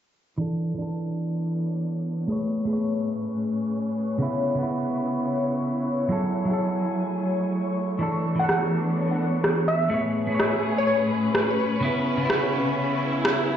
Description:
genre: future garage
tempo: 126 BPM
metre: 4/4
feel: swing 62% on 16ths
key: unclear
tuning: A4 = 441 Hz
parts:
  - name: clean electric guitar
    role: accompaniment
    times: 0.4-13.6 s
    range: C#3 to C#5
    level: -25 LUFS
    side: right 1 dB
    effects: vintage 12-bit sampler grit, low-pass filter, ping-pong delay
  - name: warm studio string section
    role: sustained chords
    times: 0.4-13.6 s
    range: A2 to G#5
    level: -30 LUFS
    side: left 1 dB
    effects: none
  - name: backwards swelling texture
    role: texture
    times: 0.4-13.6 s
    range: C#5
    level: -33 LUFS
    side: left 4 dB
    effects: built-in reverb
  - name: plucky unison lead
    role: melody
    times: 8.4-11.0 s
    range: C#5 to F#5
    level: -27 LUFS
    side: equal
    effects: ping-pong delay
  - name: electronic rim click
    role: drums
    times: 8.5-13.4 s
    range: none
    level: -24 LUFS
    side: right 1 dB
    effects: low-pass filter on snare, low-pass filter on room
room: wet recital hall reverb, RT60 1.4 s, digital ambience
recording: played on a big sound system in a bare room, stone room reverb, low-pass filter, nothing above 7.8 kHz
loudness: -22 LUFS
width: side -9 dB against mid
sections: 0.4-13.6 A section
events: fade-in on string section 0.4-13.6; filter sweep on clean electric guitar 0.4-13.6; filter sweep 0.4-13.6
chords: 0.4 E7sus4; 2.3 Amaj9; 4.2 C#m7; 6.1 F#m9; 8.0 E7sus4; 9.9 Amaj9; 11.8 C#m7

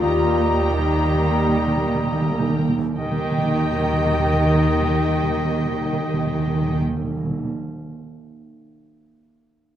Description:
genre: quick classical-period movement for symphony orchestra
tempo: 77-85 BPM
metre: 4/4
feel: rubato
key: Eb major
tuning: A4 = 440 Hz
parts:
  - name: muted chamber violin section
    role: melody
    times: 0.0-6.8 s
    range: G5 to Bb5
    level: -32 LUFS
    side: left 2 dB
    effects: none
  - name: clear oboe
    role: second line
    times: 0.0-6.8 s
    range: Eb5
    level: -30 LUFS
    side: equal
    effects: none
  - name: mellow clarinet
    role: second line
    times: 0.0-6.8 s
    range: G4 to Bb4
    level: -31 LUFS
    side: left 1 dB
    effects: none
  - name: mellow hollow concert flute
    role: second line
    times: 0.0-6.8 s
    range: G5 to Bb5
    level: -33 LUFS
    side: left 1 dB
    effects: none
  - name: muted symphonic violin section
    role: second line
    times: 0.0-6.8 s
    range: Eb5 to G5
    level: -34 LUFS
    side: left 3 dB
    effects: none
  - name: muted chamber viola section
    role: accompaniment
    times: 0.0-6.8 s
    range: Bb3 to G4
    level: -31 LUFS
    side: right 3 dB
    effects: none
  - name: warm bassoon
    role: accompaniment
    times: 0.0-6.8 s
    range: Eb3 to G3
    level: -30 LUFS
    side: right 2 dB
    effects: none
  - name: dark French horn section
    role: sustained chords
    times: 0.0-6.8 s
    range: Eb4 to F4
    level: -26 LUFS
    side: left 4 dB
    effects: none
  - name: muted chamber cello section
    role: bass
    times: 0.0-6.8 s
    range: Eb3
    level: -31 LUFS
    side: right 2 dB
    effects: none
  - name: muted studio double bass section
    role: bass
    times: 0.0-6.8 s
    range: Eb2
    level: -25 LUFS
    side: right 2 dB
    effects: none
  - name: timpani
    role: percussion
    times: 0.0-7.5 s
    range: Eb3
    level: -24 LUFS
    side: right 2 dB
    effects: none
room: wet scoring stage reverb, RT60 1.8 s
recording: none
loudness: -18 LUFS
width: side -10 dB against mid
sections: 0.0-3.0 A section; 3.0-6.0 B section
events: slowing down 0.0-3.0; timpani fill 0.0-3.0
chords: 0.0 Eb

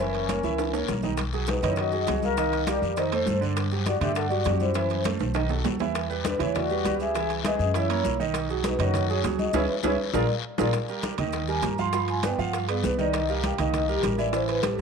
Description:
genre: Afro-Cuban jazz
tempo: 201 BPM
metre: 4/4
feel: straight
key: Eb major from 10.7 s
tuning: A4 = 443 Hz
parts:
  - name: vibraphone with soft mallets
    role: melody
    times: 0.0-14.8 s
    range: G4 to C6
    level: -29 LUFS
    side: left 2 dB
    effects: tape echo
  - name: breathy mellow concert flute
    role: second line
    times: 0.0-10.7 s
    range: Db4 to A#4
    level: -32 LUFS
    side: left 13 dB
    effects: none
  - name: warm concert grand piano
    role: accompaniment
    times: 0.0-14.8 s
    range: D3 to F5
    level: -29 LUFS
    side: right 12 dB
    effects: none
  - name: upright bass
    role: bass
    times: 0.0-14.8 s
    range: Gb1 to G2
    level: -30 LUFS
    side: left 1 dB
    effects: none
  - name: maracas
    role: percussion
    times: 0.0-14.8 s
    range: none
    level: -47 LUFS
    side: right 13 dB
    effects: none
  - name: bongos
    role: percussion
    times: 0.1-14.8 s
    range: none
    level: -37 LUFS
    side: left 16 dB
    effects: none
  - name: congas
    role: percussion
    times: 0.1-14.8 s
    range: none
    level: -33 LUFS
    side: left 2 dB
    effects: none
  - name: timbales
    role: percussion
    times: 0.1-14.8 s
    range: none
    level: -35 LUFS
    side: right 14 dB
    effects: none
  - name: guiro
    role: percussion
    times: 0.3-14.8 s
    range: none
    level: -39 LUFS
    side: left 16 dB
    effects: none
room: light reverb, studio reverb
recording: 1960s-style stereo with parts hard left and right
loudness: -23 LUFS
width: side -6 dB against mid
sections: 0.0-1.2 A section; 1.2-10.7 B section; 10.7-14.8 C section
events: drum fill 0.6-1.2, 5.2-6.0, 10.0-10.7; band accent 9.5-10.7; vibraphone solo 10.7-14.8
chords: 0.0 Gb7; 1.2 B6; 2.4 Cm7; 3.0 F9; 3.6 G5; 4.8 F#m7b5; 5.4 B7; 6.0 Em9; 7.1 C#m7; 7.7 F#6; 8.3 B6; 9.5 C#m7; 10.1 A#7; 10.7 Eb; 11.9 G7; 13.1 Cm7

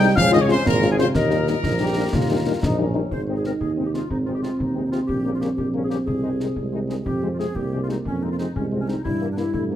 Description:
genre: military-style march for wind band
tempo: 122 BPM (dotted quarters)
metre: 6/8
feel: straight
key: Ab major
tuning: A4 = 439 Hz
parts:
  - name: bright trumpet section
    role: melody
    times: 0.0-9.8 s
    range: Bb3 to G5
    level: -28 LUFS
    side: left 2 dB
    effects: none
  - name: dark euphonium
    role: second line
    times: 0.0-9.8 s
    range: Ab2 to Eb4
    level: -26 LUFS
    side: right 2 dB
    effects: none
  - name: mellow woodwind section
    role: second line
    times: 0.0-9.6 s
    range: Db4 to G5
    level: -30 LUFS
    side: left 3 dB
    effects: none
  - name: wooden piccolo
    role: second line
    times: 0.0-2.9 s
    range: Ab5 to G6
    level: -29 LUFS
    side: left 5 dB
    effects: none
  - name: mellow French horn section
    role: accompaniment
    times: 0.0-9.8 s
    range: C3 to F4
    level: -27 LUFS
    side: left 5 dB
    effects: none
  - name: mellow trombone section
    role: sustained chords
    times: 0.0-3.1 s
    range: Db4 to G4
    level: -27 LUFS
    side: left 3 dB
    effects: none
  - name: warm tuba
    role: bass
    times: 0.0-9.8 s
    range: Ab1 to G2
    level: -25 LUFS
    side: right 2 dB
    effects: none
  - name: concert snare drum and concert bass drum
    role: drums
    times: 0.2-9.7 s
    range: none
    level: -28 LUFS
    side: left 1 dB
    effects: none
room: wet large studio reverb, RT60 1.4 s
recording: none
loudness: -20 LUFS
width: side -11 dB against mid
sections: 0.0-3.1 A section; 3.1-9.8 B section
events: none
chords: 0.2 Db; 1.1 Eb; 3.1 Ab; 5.1 Gdim/Bb; 6.1 Ab/C; 7.1 Fm; 9.0 Edim/G

